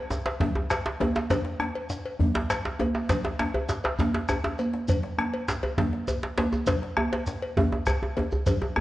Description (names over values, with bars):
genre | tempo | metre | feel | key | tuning
west african traditional, West African drum ensemble | 134 BPM (dotted quarters) | 12/8 | straight | none | none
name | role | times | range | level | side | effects
djembe | percussion | 0.1-8.8 s | none | -33 LUFS | left 3 dB | none
djembe | percussion | 0.1-8.8 s | none | -29 LUFS | right 1 dB | none
shekere | percussion | 0.1-8.6 s | none | -37 LUFS | right 1 dB | none
cowbell | percussion | 0.3-8.6 s | none | -34 LUFS | left 3 dB | none
bombo | percussion | 0.4-8.8 s | none | -30 LUFS | equal | none
congas | percussion | 0.4-8.8 s | none | -32 LUFS | right 2 dB | none
room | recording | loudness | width
moderate scoring stage reverb, RT60 1.8 s | worn, warbling old tape, cassette tape, warbly pitch drift, nothing above 10.4 kHz | -24 LUFS | side -16 dB against mid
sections
0.0-8.8 A section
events
drum fill 4.1-4.9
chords
none